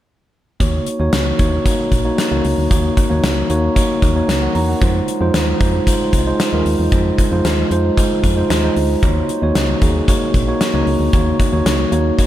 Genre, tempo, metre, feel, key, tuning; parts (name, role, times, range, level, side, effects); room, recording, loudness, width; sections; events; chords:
1980s-style pop; 114 BPM; 4/4; straight; Eb dorian; A4 = 440 Hz
mellow tine electric piano; accompaniment; 0.6-12.3 s; Ab3 to Bb5; -17 LUFS; equal
solid FM bass; bass; 0.6-12.1 s; Bb1 to F2; -19 LUFS; equal
gated 80s drum kit; drums; 0.6-12.3 s; hi-hat, kick drum, snare drum; -18 LUFS; equal
moderate cathedral reverb, RT60 7.3 s; dreamy mix soaked in reverb; -14 LUFS; side -13 dB against mid
0.6-12.3 A section
0.6 Ebm7; 4.8 Fm7; 9.0 Ebm7